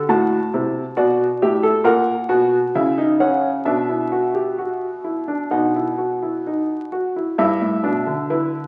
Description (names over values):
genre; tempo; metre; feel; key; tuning
classical, baroque-style 3-part fugue for grand piano; 66 BPM; 4/4; straight; E minor; A4 = 439 Hz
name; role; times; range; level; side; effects
clear grand piano; solo; 0.0-8.7 s; G2 to A5; -20 LUFS; equal; none
room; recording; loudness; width
wet recital hall reverb, RT60 1.5 s; very old 78 rpm record, vinyl crackle; -20 LUFS; mono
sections
0.1-7.4 A section; 7.4-8.7 B section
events
none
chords
0.1 F#dim/A; 1.9 A#dim; 3.7 Bsus4; 5.5 B; 7.4 Em/G